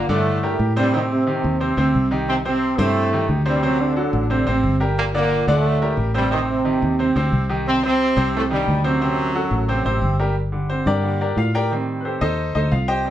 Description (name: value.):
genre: latin, salsa.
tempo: 178 BPM.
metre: 4/4.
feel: straight.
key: G harmonic minor.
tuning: A4 = 440 Hz.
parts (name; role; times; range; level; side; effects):
brilliant trombone section; melody; 0.0-10.0 s; F#2 to Eb4; -21 LUFS; right 1 dB; none.
bright baby grand piano; accompaniment; 0.0-13.1 s; C3 to G5; -22 LUFS; equal; none.
fingered electric bass; bass; 0.0-13.1 s; G1 to A2; -22 LUFS; equal; none.
room: wet studio reverb, RT60 0.5 s.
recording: heard from further back in the room.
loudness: -17 LUFS.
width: side -12 dB against mid.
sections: 0.0-10.4 A section; 10.4-13.1 B section.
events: grand piano solo 10.4-13.1.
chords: 0.0 Gm; 0.9 Cm; 3.6 D7; 5.0 Gm; 6.3 Am7b5; 7.7 Cm; 9.0 D7; 10.4 Gm; 11.7 Am7b5.